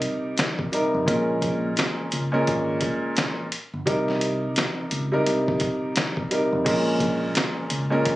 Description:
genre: hip hop, boom-bap hip-hop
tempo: 86 BPM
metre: 4/4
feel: swing 59% on 16ths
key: Bb dorian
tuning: A4 = 440 Hz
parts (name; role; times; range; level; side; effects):
- warm upright piano; accompaniment; 0.0-8.2 s; Bb2 to Bb4; -24 LUFS; equal; none
- trip hop sampler-style drum kit; drums; 0.0-8.2 s; crash cymbal, hi-hat, kick drum, snare drum; -26 LUFS; equal; vintage 12-bit sampler grit
- fingered electric bass; bass; 0.9-8.2 s; F1 to Db2; -28 LUFS; left 1 dB; none
room: light reverb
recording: recorded on a phone in the room, studio ambience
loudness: -22 LUFS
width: side -17 dB against mid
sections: 0.0-6.7 A section; 6.7-8.2 A section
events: none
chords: 0.0 Cm7; 1.1 Bbm7; 3.9 Cm7; 6.7 Bbm7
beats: 0.38 | 1.08 1.78 2.47 3.17 | 3.87 4.57 5.26 5.96 | 6.66 7.36 8.05

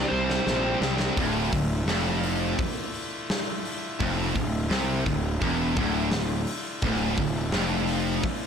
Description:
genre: heavy metal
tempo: 85 BPM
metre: 4/4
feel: straight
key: D minor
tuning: A4 = 440 Hz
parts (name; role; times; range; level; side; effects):
- high-gain lead guitar; melody; 0.0-0.8 s; C5 to D5; -30 LUFS; equal; distortion, tape echo
- high-gain lead guitar; second line; 0.0-0.8 s; C4; -36 LUFS; right 3 dB; distortion
- pipe organ, trumpet; sustained chords; 0.0-8.5 s; C3 to F4; -37 LUFS; left 1 dB; none
- fuzz guitar; riff; 0.0-8.2 s; D2 to C4; -31 LUFS; left 1 dB; distortion
- high-gain distorted guitar; riff; 0.0-8.2 s; D2 to G3; -33 LUFS; left 11 dB; distortion
- scooped high-gain guitar; riff; 0.0-8.2 s; D2 to C4; -32 LUFS; right 10 dB; distortion
- fuzz picked electric bass; bass; 0.0-8.2 s; D1 to C2; -29 LUFS; equal; overdrive
- big rock drum kit; drums; 0.3-8.4 s; hi-hat, kick drum, snare drum; -30 LUFS; left 1 dB; none
room: light reverb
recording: blown-out, overdriven recording, overdrive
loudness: -24 LUFS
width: side -7 dB against mid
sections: 0.0-1.2 A section; 1.2-8.5 B section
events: drum fill 0.0-1.2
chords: 0.0 C; 1.2 Dm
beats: 0.48 | 1.18 1.89 2.59 3.30 | 4.00 4.71 5.41 6.11 | 6.82 7.52 8.23

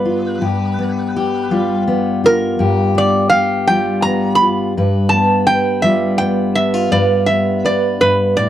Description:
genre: acoustic country blues, solo or duo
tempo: 55 BPM (dotted quarters)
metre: 12/8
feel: straight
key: G mixolydian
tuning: A4 = 440 Hz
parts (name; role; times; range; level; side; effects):
- metal-body resonator slide guitar; melody; 0.0-8.5 s; Bb4 to B5; -16 LUFS; right 1 dB; none
- fingerpicked steel-string acoustic guitar; accompaniment; 0.0-8.5 s; G2 to B4; -15 LUFS; left 1 dB; none
room: light reverb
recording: dry, close 1970s-style studio recording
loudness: -13 LUFS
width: side -11 dB against mid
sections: 0.0-8.5 A section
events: resonator guitar played with a steel bar solo 0.0-8.5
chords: 0.0 G7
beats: | 0.42 1.50 2.59 3.67 | 4.75 5.84 6.92 8.00

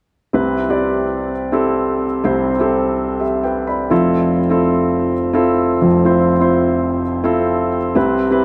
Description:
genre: pop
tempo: 126 BPM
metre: 4/4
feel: straight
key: C major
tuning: A4 = 440 Hz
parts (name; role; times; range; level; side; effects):
- dark baby grand piano; solo; 0.3-8.4 s; F1 to B5; -16 LUFS; equal; delay
room: moderate lush hall reverb, RT60 2.8 s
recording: none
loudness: -17 LUFS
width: mono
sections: 0.3-8.0 A section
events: none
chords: 0.3 Cmaj7; 3.9 Fmaj7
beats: | 0.34 0.81 1.29 1.77 | 2.24 2.72 3.19 3.67 | 4.15 4.62 5.10 5.58 | 6.05 6.53 7.00 7.48 | 7.96 8.43

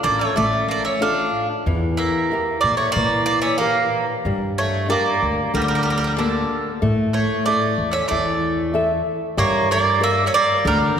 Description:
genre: greek folk, Greek bouzouki band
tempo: 93 BPM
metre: 4/4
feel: straight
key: unclear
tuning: A4 = 440 Hz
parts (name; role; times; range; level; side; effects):
- Greek bouzouki; melody; 0.0-11.0 s; A4 to F5; -21 LUFS; right 2 dB; none
- Greek bouzouki; second line; 0.0-11.0 s; D3 to D4; -24 LUFS; right 2 dB; none
- flamenco guitar; accompaniment; 0.0-11.0 s; D3 to E5; -24 LUFS; left 2 dB; none
- upright bass; bass; 0.0-11.0 s; A1 to Bb2; -25 LUFS; equal; none
room: wet concert hall reverb, RT60 2.4 s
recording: recorded in a church or concert hall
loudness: -17 LUFS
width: side -8 dB against mid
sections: 0.0-9.4 A section; 9.4-11.0 B section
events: none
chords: 0.0 Dm; 1.7 Edim; 4.2 Gm; 6.8 A5; 9.4 Gm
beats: 0.36 1.01 | 1.66 2.31 2.96 3.60 | 4.25 4.89 5.54 6.18 | 6.82 7.46 8.10 8.74 | 9.38 10.02 10.65

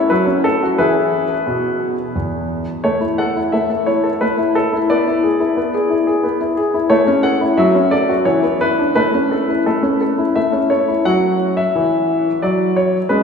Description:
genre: classical-period piano sonatina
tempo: 88 BPM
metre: 3/4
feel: straight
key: A major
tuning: A4 = 440 Hz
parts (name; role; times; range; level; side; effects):
- clear concert grand piano; solo; 0.0-13.2 s; E2 to F#5; -14 LUFS; left 1 dB; none
room: wet cathedral reverb, RT60 5.1 s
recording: recorded in a church or concert hall, small room ambience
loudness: -14 LUFS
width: side -6 dB against mid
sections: 0.0-11.1 A section; 11.1-13.2 B section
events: none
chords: 0.1 F#m; 0.8 E; 2.8 A5; 4.9 E7/B; 6.9 A; 7.6 F#m; 8.3 E5; 9.0 A; 11.1 Dadd9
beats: 0.10 | 0.78 1.47 2.15 | 2.84 3.52 4.21 | 4.90 5.57 6.24 | 6.91 7.58 8.26 | 8.96 9.66 10.36 | 11.05 11.74 12.42 | 13.10

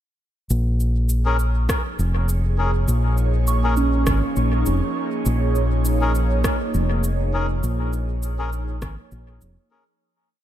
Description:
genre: ambient dub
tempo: 101 BPM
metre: 4/4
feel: swing 54% on 16ths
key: Bb minor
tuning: A4 = 440 Hz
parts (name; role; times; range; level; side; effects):
- airy breathy pad; sustained chords; 1.6-10.0 s; F3 to Db5; -27 LUFS; right 2 dB; chorus, phaser
- fingered electric bass; bass; 0.5-9.6 s; F1 to Bb1; -20 LUFS; equal; none
- electronic cabasa and rim click; drums; 0.5-9.5 s; none; -31 LUFS; equal; overdrive, dub echo
- melodica; stabs; 1.3-9.8 s; Db4 to Bb4; -29 LUFS; left 3 dB; vintage 12-bit sampler grit, dub echo
- electronic kick drum; drums; 1.7-8.9 s; none; -26 LUFS; equal; overdrive
- soft synth bell; arpeggios; 3.5-10.0 s; Db4 to Db6; -27 LUFS; right 5 dB; chorus, phaser, low-pass filter, tape echo
room: light reverb, digital ambience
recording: none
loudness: -19 LUFS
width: side -12 dB against mid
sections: 0.5-10.0 groove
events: fade-in on analog synth pad 0.5-10.0; fade-out 6.8-10.0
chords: 0.5 Bbm7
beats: | 0.50 1.10 1.69 2.29 | 2.88 3.47 4.07 4.66 | 5.25 5.85 6.44 7.04 | 7.63 8.23 8.82 9.41

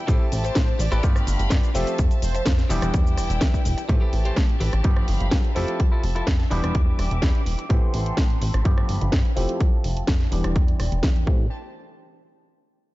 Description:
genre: filtered disco house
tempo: 126 BPM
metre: 4/4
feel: straight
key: A minor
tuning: A4 = 440 Hz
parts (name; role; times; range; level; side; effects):
- clav; accompaniment; 0.0-11.5 s; E3 to E5; -30 LUFS; equal; phaser, sidechain pumping, low-pass filter
- clear studio violin section; sustained chords; 0.0-11.5 s; E4 to D6; -35 LUFS; equal; sidechain pumping, low-pass filter
- clean electric guitar; riff; 0.1-7.6 s; D4 to E5; -34 LUFS; left 2 dB; sidechain pumping, low-pass filter
- plucky analog bass; bass; 0.1-11.5 s; E1 to A2; -24 LUFS; equal; sidechain pumping, low-pass filter
- electronic kick drum; drums; 0.1-11.4 s; none; -20 LUFS; equal; overdrive
- house drum kit; drums; 0.1-11.2 s; hi-hat, rim click, shaker, snare drum; -30 LUFS; equal; overdrive, sidechain pumping on hats, sidechain pumping on perc
- analog synth brass; melody; 0.4-2.6 s; C5 to D5; -33 LUFS; left 1 dB; chorus, sidechain pumping, low-pass filter
room: digital ambience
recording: dark, warm production, nothing above 7.7 kHz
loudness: -19 LUFS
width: side -18 dB against mid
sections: 0.0-3.9 A section; 3.9-11.5 B section; 11.5-12.9 C section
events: drop 0.0-3.9; filter sweep on analog synth bass 3.9-11.5; filter sweep 3.9-11.5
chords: 0.1 Am7; 1.0 G7; 1.8 Fmaj7; 2.7 Em7; 3.9 Am7; 4.8 G7; 5.6 Fmaj7; 6.5 Em7; 7.7 Am7; 8.7 G7; 9.4 Fmaj7; 10.3 Em7; 11.3 Am7; 11.5 N.C.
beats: | 0.08 0.56 1.04 1.51 | 1.99 2.46 2.94 3.42 | 3.89 4.37 4.84 5.32 | 5.80 6.27 6.75 7.23 | 7.70 8.18 8.65 9.13 | 9.61 10.08 10.56 11.04

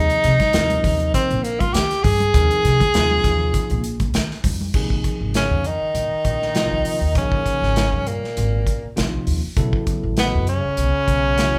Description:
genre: electric jazz fusion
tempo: 100 BPM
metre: 4/4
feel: swing 54% on 16ths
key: unclear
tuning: A4 = 440 Hz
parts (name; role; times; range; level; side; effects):
- breathy tenor saxophone; melody; 0.0-11.6 s; Bb3 to Ab4; -22 LUFS; equal; none
- bell-like tine electric piano; accompaniment; 0.0-11.6 s; C3 to Bb4; -29 LUFS; equal; none
- upright bass; bass; 0.0-11.6 s; Ab1 to Eb3; -25 LUFS; equal; none
- modern studio drum kit; drums; 0.1-11.5 s; crash cymbal, hi-hat, kick drum, snare drum; -25 LUFS; equal; none
- congas; percussion; 0.4-4.7 s; none; -30 LUFS; equal; none
- warm bass clarinet; second line; 5.4-11.6 s; Bb2 to Eb3; -32 LUFS; equal; none
room: moderate large studio reverb, RT60 0.9 s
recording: band playing live in one room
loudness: -20 LUFS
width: mono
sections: 0.0-4.7 A section; 4.7-11.6 B section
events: none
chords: 0.0 Ebsus24; 4.7 Bbm9; 9.6 Bsus2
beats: 0.54 1.14 1.74 | 2.34 2.94 3.54 4.15 | 4.75 5.35 5.95 6.55 | 7.16 7.76 8.36 8.97 | 9.57 10.17 10.78 11.38

